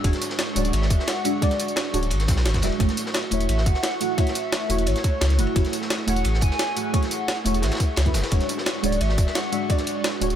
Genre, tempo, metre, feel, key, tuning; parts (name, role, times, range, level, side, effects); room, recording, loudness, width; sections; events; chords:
liquid drum and bass; 174 BPM; 4/4; straight; F# minor; A4 = 438 Hz
deep mellow chord stab; accompaniment; 0.0-10.4 s; G#3 to F#5; -27 LUFS; right 1 dB; chorus, phaser, dub echo
airy breathy pad; sustained chords; 0.0-10.4 s; G#3 to C#6; -32 LUFS; right 2 dB; chorus
warm sub bass; bass; 0.0-10.4 s; D1 to C#2; -23 LUFS; equal; tube saturation
crunchy breakbeat drum kit; drums; 0.0-10.3 s; ride cymbal, snare drum; -32 LUFS; equal; high-pass filter on cymbals, high-pass filter on snare, high-pass filter on room, dub echo
electronic kick drum; drums; 0.0-9.8 s; -22 LUFS; equal; overdrive
jungle sampler-style drum kit; drums; 0.0-10.4 s; hi-hat, snare drum, tambourine; -28 LUFS; equal
hollow clarinet-like synth lead; melody; 0.6-10.0 s; C#5 to G#5; -30 LUFS; equal; analog chorus, tape echo
light reverb; echo-heavy mix; -20 LUFS; side -10 dB against mid
0.0-10.4 A section
0.0 E13; 2.8 F#m7; 8.3 E13